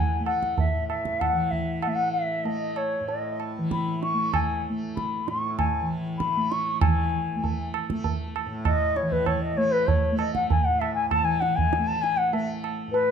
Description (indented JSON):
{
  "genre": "indian classical, Hindustani",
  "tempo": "97 BPM",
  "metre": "4/4",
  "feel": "straight",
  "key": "A raga yaman",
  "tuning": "A4 = 440 Hz",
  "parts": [
    { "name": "mellow bansuri", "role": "melody", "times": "0.0-13.1 s", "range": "B4 to C#6", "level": "-25 LUFS", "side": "left 2 dB", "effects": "none" },
    { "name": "tanpura", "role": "drone", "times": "0.0-13.1 s", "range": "A2 to A3", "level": "-31 LUFS", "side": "equal", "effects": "none" },
    { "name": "tabla", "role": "percussion", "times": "0.3-13.1 s", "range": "none", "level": "-27 LUFS", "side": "right 4 dB", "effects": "none" }
  ],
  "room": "moderate recital hall reverb, RT60 1.5 s",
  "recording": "dark, warm production",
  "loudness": "-23 LUFS",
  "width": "side -7 dB against mid",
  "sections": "0.0-6.8 A section; 6.8-13.1 B section",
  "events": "speeding up 0.0-13.1",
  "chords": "none"
}